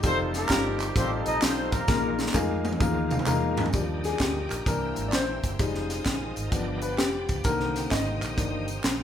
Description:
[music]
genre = uptempo gospel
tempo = 129 BPM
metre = 4/4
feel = swing 66% on 8ths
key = Eb major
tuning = A4 = 440 Hz
[part]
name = warm horn section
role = melody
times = 0.0-2.6 s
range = Bb3 to Eb5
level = -29 LUFS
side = equal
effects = none
[part]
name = warm grand piano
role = accompaniment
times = 0.0-9.0 s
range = Bb2 to Bb5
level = -29 LUFS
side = left 4 dB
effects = none
[part]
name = bright tonewheel organ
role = sustained chords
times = 0.0-9.0 s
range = C3 to Eb5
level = -38 LUFS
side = right 3 dB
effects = slow rotary speaker, overdrive, chorus vibrato
[part]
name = vintage muted fingered electric bass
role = bass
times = 0.0-9.0 s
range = F1 to F2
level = -33 LUFS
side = right 1 dB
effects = none
[part]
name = crisp fusion drum kit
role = drums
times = 0.0-9.0 s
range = hi-hat, kick drum, snare drum, toms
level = -28 LUFS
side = right 1 dB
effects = none
[part]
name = tambourine and handclaps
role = percussion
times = 0.0-9.0 s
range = none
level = -38 LUFS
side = right 1 dB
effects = none
[part]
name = warm studio string section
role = sustained chords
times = 3.7-9.0 s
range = F5 to E6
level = -40 LUFS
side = left 2 dB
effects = none
[sound]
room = moderate large studio reverb, RT60 0.9 s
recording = band playing live in one room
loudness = -24 LUFS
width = side -9 dB against mid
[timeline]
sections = 0.0-3.7 A section; 3.7-9.0 B section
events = drum fill 1.9-3.7; grand piano fill 2.8-3.7; grand piano solo 3.7-9.0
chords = 0.0 F9; 1.9 Bb7sus4; 3.7 Ebmaj7; 4.7 C7; 5.6 Fm7; 6.5 G7; 7.5 Cm7

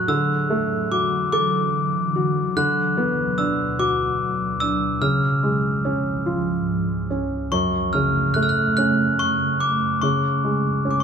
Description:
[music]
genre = children's music, lullaby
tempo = 48 BPM (dotted quarters)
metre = 6/8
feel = straight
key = F# harmonic minor from 7.5 s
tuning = A4 = 438 Hz
[part]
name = glockenspiel with hard plastic mallets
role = melody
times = 0.0-11.0 s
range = C#6 to F#6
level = -22 LUFS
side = left 1 dB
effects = none
[part]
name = felt-muted upright piano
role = accompaniment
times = 0.0-11.0 s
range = F#2 to A4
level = -23 LUFS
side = equal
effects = none
[part]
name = ethereal airy pad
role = sustained chords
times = 0.0-11.0 s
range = C#2 to A3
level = -26 LUFS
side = right 1 dB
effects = ensemble chorus, built-in reverb
[sound]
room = moderate recital hall reverb, RT60 1.4 s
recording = close, detailed microphones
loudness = -19 LUFS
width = side -7 dB against mid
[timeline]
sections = 0.0-7.5 A section; 7.5-11.0 B section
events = none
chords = 0.1 Dadd9; 2.6 Bm/D; 5.0 C#; 7.5 F#m; 10.0 C#

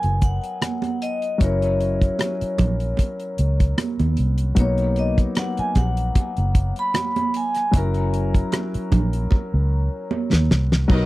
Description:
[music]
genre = lush 1970s-style soul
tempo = 76 BPM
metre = 4/4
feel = swing 54% on 16ths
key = unclear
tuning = A4 = 441 Hz
[part]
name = vibraphone with medium hard mallets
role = melody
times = 0.0-10.1 s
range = C#5 to B5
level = -26 LUFS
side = left 1 dB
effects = tape echo
[part]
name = warm concert grand piano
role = accompaniment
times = 0.0-11.1 s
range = F#3 to A#4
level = -27 LUFS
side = left 2 dB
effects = none
[part]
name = vintage muted fingered electric bass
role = bass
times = 0.0-11.1 s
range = F#1 to D#2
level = -21 LUFS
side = equal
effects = none
[part]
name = damped 70s drum kit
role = drums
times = 0.0-11.1 s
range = crash cymbal, hi-hat, kick drum, rim click, snare drum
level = -19 LUFS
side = equal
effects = none
[part]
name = congas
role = percussion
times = 0.6-10.5 s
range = none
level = -27 LUFS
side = right 6 dB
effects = none
[part]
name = dark chamber string section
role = second line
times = 10.9-11.1 s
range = F#4 to A#5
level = -29 LUFS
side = right 1 dB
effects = none
[sound]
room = little or no reverb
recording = dry, close 1970s-style studio recording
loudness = -19 LUFS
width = side -18 dB against mid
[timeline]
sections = 0.0-10.9 A section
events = drum fill 9.3-10.9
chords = 0.0 Bmaj7; 1.4 F#7; 4.6 Bmaj7; 7.7 F#7

